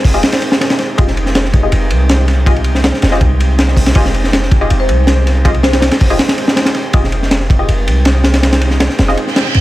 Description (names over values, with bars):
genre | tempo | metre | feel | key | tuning
drum and bass, jungle | 161 BPM | 4/4 | straight | F minor | A4 = 440 Hz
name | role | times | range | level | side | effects
marimba with medium mallets | melody | 0.0-0.3, 4.8-6.0 s | C5 | -24 LUFS | left 3 dB | vintage 12-bit sampler grit, dub echo
airy breathy pad | sustained chords | 0.0-9.6 s | Ab3 to G4 | -22 LUFS | right 2 dB | chorus
warm 808-style bass | bass | 0.0-9.6 s | F1 to C2 | -13 LUFS | equal | none
crunchy breakbeat drum kit | drums | 0.0-9.6 s | hi-hat, kick drum, ride cymbal, snare drum | -13 LUFS | equal | none
filtered dub chord stab | stabs | 0.1-9.1 s | F4 to Eb5 | -22 LUFS | left 2 dB | chorus, dub echo
reverse cymbal | sound effects | 9.3-9.6 s | none | -17 LUFS | right 5 dB | none
room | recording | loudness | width
studio reverb | none | -10 LUFS | side -16 dB against mid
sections
0.0-9.6 A section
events
reverse cymbal 9.3-9.6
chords
0.0 Fm9